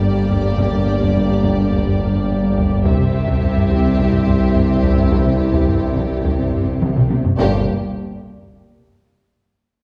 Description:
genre	cinematic, hybrid orchestral and electronic film score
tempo	106 BPM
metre	4/4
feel	straight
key	G dorian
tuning	A4 = 438 Hz
part	warm symphonic violin section	melody	0.0-7.7 s	D5 to E5	-31 LUFS	equal	low-pass filter
part	warm symphonic violin section	second line	0.0-7.7 s	G4	-33 LUFS	equal	none
part	warm symphonic viola section	accompaniment	0.0-7.7 s	Bb3 to C4	-32 LUFS	equal	none
part	chorused pulse-width pad	sustained chords	0.0-7.7 s	G3 to E5	-29 LUFS	equal	low-pass filter
part	warm French horn section	sustained chords	0.0-7.6 s	Bb3 to E4	-28 LUFS	equal	low-pass filter
part	warm trombone section	sustained chords	0.0-7.6 s	G2 to G3	-34 LUFS	equal	none
part	smooth synth bass	riff	0.0-7.3 s	C2 to G3	-25 LUFS	equal	none
part	mellow tuba	bass	0.0-7.6 s	G1 to C2	-26 LUFS	equal	none
part	pure sine sub bass	bass	0.0-7.7 s	G1 to C2	-28 LUFS	equal	none
part	rich symphonic double bass section	bass	0.0-7.7 s	G1 to C2	-26 LUFS	equal	none
part	warm symphonic cello section	bass	0.0-7.7 s	G2 to C3	-28 LUFS	equal	none
part	taiko ensemble	drums	0.3-8.5 s	none	-23 LUFS	equal	none
room	wet recital hall reverb, RT60 1.7 s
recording	heard from further back in the room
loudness	-17 LUFS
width	mono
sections	0.0-7.4 A section; 7.4-9.6 B section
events	filter sweep 0.0-7.4; drum fill 6.8-7.4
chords	0.0 Gm; 2.9 C; 7.4 Gm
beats	0.03 | 0.59 1.16 1.72 2.29 | 2.85 3.42 3.99 4.55 | 5.12 5.68 6.25 6.82 | 7.38 7.95

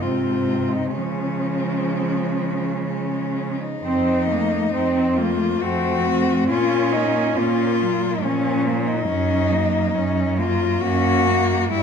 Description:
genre	classical, lyrical piece for cello ensemble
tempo	62-70 BPM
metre	3/4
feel	rubato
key	unclear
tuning	A4 = 440 Hz
part	rich cello	melody	0.0-11.8 s	Db4 to Gb4	-23 LUFS	left 7 dB	none
part	rich cello	second line	0.0-11.8 s	F3 to Db4	-24 LUFS	right 6 dB	none
part	warm cello	accompaniment	0.0-11.8 s	C3 to Db4	-26 LUFS	left 2 dB	none
part	rich cello	bass	0.0-11.8 s	F2 to Db3	-25 LUFS	right 3 dB	none
room	moderate recital hall reverb, RT60 1.4 s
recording	none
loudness	-18 LUFS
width	side -6 dB against mid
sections	0.0-3.8 A section; 3.8-11.8 B section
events	none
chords	0.0 Ab; 1.0 Db; 3.8 F7; 6.5 Bbm; 9.1 Gb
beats	0.03 | 0.97 1.92 2.88 | 3.83 4.73 5.61 | 6.49 7.37 8.23 | 9.10 9.96 10.82 | 11.71

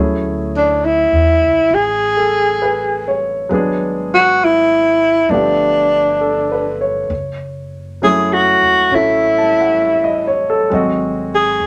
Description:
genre	jazz ballad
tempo	67 BPM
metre	4/4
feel	swing 68% on 8ths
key	unclear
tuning	A4 = 440 Hz
part	clear baby grand piano	accompaniment	0.0-11.7 s	F3 to A5	-21 LUFS	equal	none
part	upright bass	bass	0.0-11.7 s	E1 to E2	-28 LUFS	equal	none
part	breathy alto saxophone	melody	0.6-11.7 s	D4 to G#4	-15 LUFS	equal	none
room	moderate club reverb, RT60 0.5 s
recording	none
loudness	-15 LUFS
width	mono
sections	0.0-11.7 A section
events	none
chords	0.0 Dmaj9#11; 3.5 G#m7b5; 5.3 G9; 7.1 F#m7; 10.7 G#7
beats	0.82 1.72 2.61 | 3.50 4.40 5.29 6.20 | 7.10 8.00 8.90 9.80 | 10.70 11.60

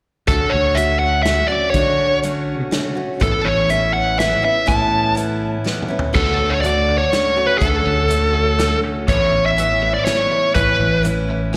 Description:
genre	folk rock and heartland rock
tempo	123 BPM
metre	3/4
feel	straight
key	unclear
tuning	A4 = 439 Hz
part	bluesy overdriven lead guitar	melody	0.3-11.0 s	A4 to A5	-19 LUFS	equal	distortion, slapback echo, analog delay
part	picked steel-string acoustic guitar	accompaniment	0.3-11.6 s	A2 to F#4	-27 LUFS	equal	slapback echo
part	fingered electric bass	bass	0.3-11.6 s	A1 to D3	-23 LUFS	equal	none
part	natural country drum kit	drums	0.3-11.6 s	crash cymbal, hi-hat, kick drum, snare drum, toms	-25 LUFS	equal	none
part	biting overdriven guitar	riff	6.1-11.6 s	A2 to D4	-31 LUFS	equal	phaser, slapback echo
room	light reverb, small room ambience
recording	live gig heard through the venue's PA, recital hall reverb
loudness	-17 LUFS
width	mono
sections	0.3-6.2 A section; 6.2-11.6 B section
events	drum fill 5.7-6.2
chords	0.3 Dmaj7; 3.2 Aadd9; 6.2 Dmaj7; 9.1 Aadd9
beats	| 0.28 0.77 1.26 | 1.75 2.24 2.73 | 3.22 3.71 4.20 | 4.69 5.17 5.66 | 6.15 6.64 7.13 | 7.62 8.11 8.60 | 9.09 9.58 10.07 | 10.56 11.05 11.54

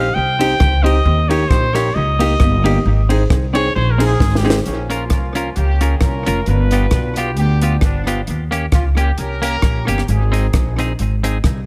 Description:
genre	ska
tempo	133 BPM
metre	4/4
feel	swing 55% on 8ths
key	Bb dorian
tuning	A4 = 440 Hz
part	clear trumpet	melody	0.0-4.6 s	G4 to G5	-22 LUFS	equal	tape echo
part	semi-hollow electric guitar	accompaniment	0.0-11.4 s	Bb3 to Bb4	-26 LUFS	equal	tape echo
part	dark upright piano	stabs	0.0-4.6 s	Bb3 to Ab4	-24 LUFS	equal	tape echo
part	upright bass	bass	0.0-11.7 s	F1 to Eb2	-19 LUFS	equal	none
part	compact cocktail drum kit	drums	0.4-11.6 s	hi-hat, kick drum, ride cymbal, rim click, snare drum	-21 LUFS	equal	tape echo
part	warm horn section	melody	4.7-10.9 s	F3 to B4	-28 LUFS	equal	tape echo
room	studio reverb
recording	none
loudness	-16 LUFS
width	mono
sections	0.0-4.7 A section; 4.7-11.7 B section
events	trumpet solo 0.0-4.7; drum fill 4.2-4.7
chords	0.0 Cm; 1.1 Eb; 2.9 Ab; 4.7 Bbm; 6.5 G7; 8.3 Eb7; 10.1 Ab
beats	0.15 0.60 | 1.05 1.50 1.95 2.40 | 2.85 3.30 3.75 4.20 | 4.65 5.11 5.56 6.01 | 6.46 6.91 7.37 7.82 | 8.27 8.72 9.18 9.63 | 10.08 10.54 10.99 11.44

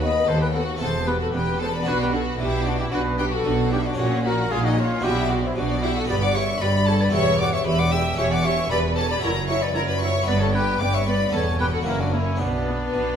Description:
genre	classical, baroque-style concerto movement with solo episodes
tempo	114 BPM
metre	4/4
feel	straight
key	unclear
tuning	A4 = 440 Hz
part	mellow concert flute	melody	0.0-13.2 s	D4 to G5	-26 LUFS	left 2 dB	none
part	warm chamber violin section	melody	0.0-13.2 s	B4 to E6	-29 LUFS	left 3 dB	none
part	rich studio violin section	second line	0.0-13.2 s	B3 to E5	-27 LUFS	left 2 dB	none
part	harpsichord	accompaniment	0.0-13.2 s	D#2 to G4	-31 LUFS	equal	none
part	warm studio viola section	accompaniment	0.0-13.0 s	A#3 to G4	-31 LUFS	right 2 dB	none
part	rich chamber double bass section	bass	0.0-13.2 s	E1 to D#2	-27 LUFS	right 2 dB	none
part	warm symphonic cello section	bass	0.0-13.2 s	D#2 to B2	-26 LUFS	right 1 dB	none
room	wet recital hall reverb, RT60 1.4 s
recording	heard from further back in the room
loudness	-20 LUFS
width	side -8 dB against mid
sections	0.0-13.2 A section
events	none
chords	0.0 B/D#; 0.8 E5; 1.9 Bm; 4.0 F#/A#; 5.0 Bm; 6.1 G; 7.1 Em; 8.2 C#dim/E; 9.2 F#5; 10.3 G; 11.3 A13/E; 11.9 F#7; 12.4 Bm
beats	0.28 0.81 1.34 | 1.87 2.40 2.92 3.45 | 3.98 4.51 5.04 5.56 | 6.08 6.61 7.13 7.66 | 8.18 8.70 9.23 9.75 | 10.28 10.80 11.33 11.87 | 12.40 12.94

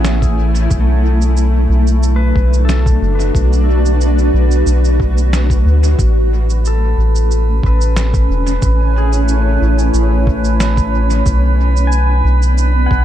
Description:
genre	ambient dub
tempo	91 BPM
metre	4/4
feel	straight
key	B dorian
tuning	A4 = 444 Hz
part	granular cloud pad	sustained chords	0.0-13.0 s	A3 to G#5	-20 LUFS	right 1 dB	built-in reverb
part	pedal steel guitar	arpeggios	0.0-13.0 s	A3 to G#5	-23 LUFS	left 7 dB	analog delay
part	soft dub sub bass	bass	0.0-13.0 s	E1 to D2	-12 LUFS	equal	none
part	electronic snare drum and cabasa	drums	0.0-12.7 s	none	-24 LUFS	right 1 dB	dub echo
part	electronic kick drum	drums	0.2-13.0 s	none	-17 LUFS	equal	none
part	drifting glass-harmonics texture	texture	6.4-13.0 s	B4	-23 LUFS	right 8 dB	chorus, built-in reverb
room	little or no reverb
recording	echo-heavy mix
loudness	-11 LUFS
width	side -11 dB against mid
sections	0.0-13.0 A section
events	none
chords	0.0 Amaj7; 0.7 Bm7; 6.0 Amaj7; 11.3 Bm7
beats	0.05 | 0.71 1.37 2.03 2.69 | 3.35 4.01 4.67 5.33 | 5.99 6.65 7.30 7.96 | 8.62 9.28 9.94 10.60 | 11.26 11.92 12.58

